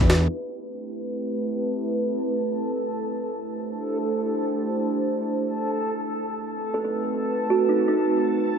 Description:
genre	drum and bass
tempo	free time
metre	none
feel	none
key	A minor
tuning	A4 = 440 Hz
part	warbly tape-like pad	sustained chords	0.0-8.6 s	A3 to C5	-26 LUFS	right 1 dB	chorus, built-in reverb
part	backwards swelling texture	texture	2.2-8.6 s	A4 to A5	-30 LUFS	left 2 dB	built-in reverb
part	kalimba	melody	6.7-8.1 s	D#4 to A4	-22 LUFS	right 3 dB	dub echo
room	moderate echo chamber reverb, RT60 2.1 s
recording	vinyl crackle, low-pass filter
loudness	-23 LUFS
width	side -7 dB against mid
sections	0.3-8.6 A section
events	filter sweep 0.3-8.6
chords	0.3 Am7; 3.3 C6; 6.4 B7b9

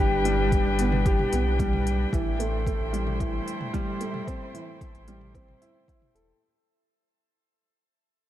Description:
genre	piano and strings electronica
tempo	112 BPM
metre	4/4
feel	straight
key	unclear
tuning	A4 = 442 Hz
part	muted string quartet	sustained chords	0.0-6.4 s	G3 to G5	-32 LUFS	left 2 dB	sidechain pumping, shimmer reverb
part	dark baby grand piano	riff	0.0-6.4 s	E3 to A4	-28 LUFS	right 1 dB	tape echo, shimmer reverb
part	round analog bass	bass	0.0-6.3 s	E1 to B1	-28 LUFS	equal	tube saturation, sidechain pumping
part	deep house drum kit	drums	0.3-6.3 s	hi-hat, toms	-36 LUFS	equal	none
part	electronic kick drum	drums	0.5-6.0 s	none	-28 LUFS	equal	none
room	light reverb, studio reverb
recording	dark, warm production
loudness	-23 LUFS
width	side -12 dB against mid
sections	0.0-6.4 A section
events	drop 0.0-6.4; fade-out 0.7-6.4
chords	0.0 G; 2.1 Am7

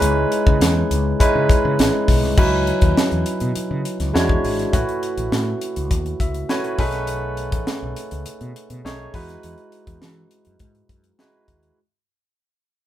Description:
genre	polished 1980s jazz-funk pop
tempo	102 BPM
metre	4/4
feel	straight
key	C# minor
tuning	A4 = 442 Hz
part	barky tine electric piano	accompaniment	0.0-11.8 s	F#3 to G#5	-21 LUFS	equal	none
part	mellow fretless electric bass	bass	0.0-11.7 s	G#1 to E3	-24 LUFS	equal	none
part	crisp fusion drum kit	drums	0.0-11.8 s	crash cymbal, hi-hat, kick drum, snare drum	-20 LUFS	equal	none
room	light reverb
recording	band playing live in one room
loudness	-17 LUFS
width	side -12 dB against mid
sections	0.0-2.4 A section; 2.4-11.8 B section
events	fade-out 2.4-11.8; tine electric piano fill 5.9-7.1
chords	0.0 C#m9; 2.4 C#m11; 4.1 E13; 4.7 A69; 6.8 B13; 9.1 Emaj9

